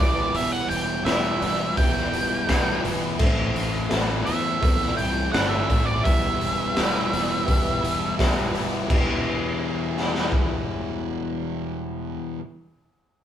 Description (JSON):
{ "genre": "classic rock", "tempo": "84 BPM", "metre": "4/4", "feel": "straight", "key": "E minor", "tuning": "A4 = 440 Hz", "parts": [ { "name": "octave-fuzz lead guitar", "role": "melody", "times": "0.0-8.1 s", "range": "D5 to G5", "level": "-26 LUFS", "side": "right 2 dB", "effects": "distortion" }, { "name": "dark upright piano", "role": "accompaniment", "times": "0.0-12.2 s", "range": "G4 to B5", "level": "-34 LUFS", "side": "equal", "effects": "none" }, { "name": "crunchy overdriven guitar", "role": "riff", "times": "0.0-12.4 s", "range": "A2 to E4", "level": "-30 LUFS", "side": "left 7 dB", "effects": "none" }, { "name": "raw garage guitar", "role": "riff", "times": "0.0-12.4 s", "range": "A2 to G4", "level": "-33 LUFS", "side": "equal", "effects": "overdrive" }, { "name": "sludgy distorted guitar", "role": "riff", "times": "0.0-12.4 s", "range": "E2 to A3", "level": "-32 LUFS", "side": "right 7 dB", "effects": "overdrive" }, { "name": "growling fingered electric bass", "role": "bass", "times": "0.0-12.1 s", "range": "E1 to E2", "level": "-32 LUFS", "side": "equal", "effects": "overdrive" }, { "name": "raw garage drum kit", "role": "drums", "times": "0.3-10.5 s", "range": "crash cymbal, hi-hat, kick drum, snare drum", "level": "-24 LUFS", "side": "equal", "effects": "none" } ], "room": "moderate large studio reverb, RT60 0.9 s", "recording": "band playing live in one room", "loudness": "-21 LUFS", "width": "side -10 dB against mid", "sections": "0.0-8.9 A section; 8.9-11.8 B section", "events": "upright piano fill 7.5-8.9", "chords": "0.0 Em; 3.2 Am; 6.1 Em" }